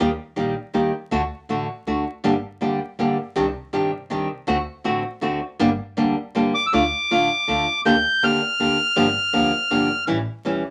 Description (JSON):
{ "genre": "tango", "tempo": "161 BPM", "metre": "3/4", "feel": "rubato", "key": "G harmonic minor, D harmonic minor from 6.7 s", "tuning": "A4 = 440 Hz", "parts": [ { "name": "nylon-string guitar", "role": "accompaniment", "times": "0.0-10.6 s", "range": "C3 to G4", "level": "-23 LUFS", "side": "equal", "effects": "none" }, { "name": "upright bass", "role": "bass", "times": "0.0-10.6 s", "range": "E1 to Eb2", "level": "-37 LUFS", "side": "equal", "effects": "none" }, { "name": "bandoneon", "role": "melody", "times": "6.5-10.0 s", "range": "D6 to G6", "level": "-22 LUFS", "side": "equal", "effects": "none" } ], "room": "moderate studio reverb, RT60 0.5 s", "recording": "vinyl crackle", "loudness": "-22 LUFS", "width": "mono", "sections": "0.0-6.7 A section; 6.7-10.7 B section", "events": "none", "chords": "0.0 Eb; 1.1 D; 2.2 Gm; 3.4 Cmadd9; 4.5 D7; 5.6 Gm; 6.7 Dm; 7.8 Bb6/D; 9.0 Gm7; 10.1 A7" }